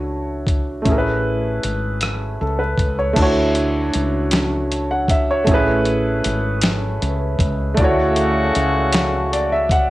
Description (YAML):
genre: slow six-eight R&B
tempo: 52 BPM (dotted quarters)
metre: 6/8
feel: straight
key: unclear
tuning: A4 = 440 Hz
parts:
  - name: warm concert grand piano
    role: accompaniment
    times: 0.0-9.9 s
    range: A3 to F#5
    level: -19 LUFS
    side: right 1 dB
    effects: cassette tape
  - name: woody fretless electric bass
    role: bass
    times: 0.0-9.9 s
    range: G#1 to D2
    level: -23 LUFS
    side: equal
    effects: wide subtle chorus
  - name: dusty soul sampler-style drum kit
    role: drums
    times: 0.5-9.9 s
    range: crash cymbal, hi-hat, kick drum, rim click, snare drum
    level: -20 LUFS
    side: equal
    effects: cassette tape
  - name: clear horn section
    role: stabs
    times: 7.8-9.7 s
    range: C#3 to F#4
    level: -20 LUFS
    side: left 1 dB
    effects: cassette tape, analog delay
room: light reverb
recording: home recording on cassette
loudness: -16 LUFS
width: side -17 dB against mid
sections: 0.0-3.2 A section; 3.2-9.9 B section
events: none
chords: 0.0 Dmaj9; 0.9 Amaj9; 3.2 Dmaj9; 5.5 Amaj9; 7.8 Dmaj9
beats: | 0.85 2.01 | 3.16 4.32 | 5.47 6.62 | 7.78 8.93